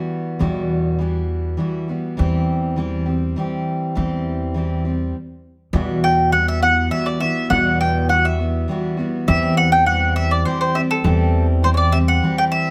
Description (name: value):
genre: acoustic folk duo or small band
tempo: 102 BPM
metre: 3/4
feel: straight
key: E minor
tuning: A4 = 436 Hz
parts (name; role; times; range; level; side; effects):
- picked steel-string acoustic guitar; accompaniment; 0.0-12.7 s; E2 to G4; -24 LUFS; equal; none
- upright bass; bass; 0.4-12.2 s; E2; -23 LUFS; equal; none
- mandolin; melody; 6.0-12.7 s; A4 to G5; -20 LUFS; equal; none
room: light reverb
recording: close, detailed microphones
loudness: -19 LUFS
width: mono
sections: 0.0-5.7 A section; 5.7-12.7 B section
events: stop 5.1-5.7; mandolin solo 5.7-12.7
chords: 0.0 Emadd9; 2.2 C/E; 5.7 Emadd9; 9.3 C/E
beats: | 0.41 1.00 1.60 | 2.19 2.78 3.37 | 3.96 4.55 5.15 | 5.74 6.33 6.92 | 7.51 8.10 8.69 | 9.28 9.87 10.46 | 11.05 11.64 12.23